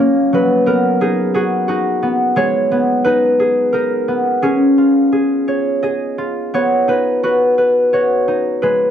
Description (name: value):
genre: children's music, lullaby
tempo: 87 BPM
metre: 3/4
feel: rubato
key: unclear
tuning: A4 = 440 Hz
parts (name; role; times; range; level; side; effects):
- concert harp; solo; 0.0-8.9 s; F#3 to D#5; -13 LUFS; equal; none
room: moderate booth ambience, RT60 0.2 s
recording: dry, close 1970s-style studio recording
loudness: -13 LUFS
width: side -9 dB against mid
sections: 0.0-8.9 A section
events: none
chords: 0.3 B/F#; 2.4 G#m; 4.4 C#; 6.5 B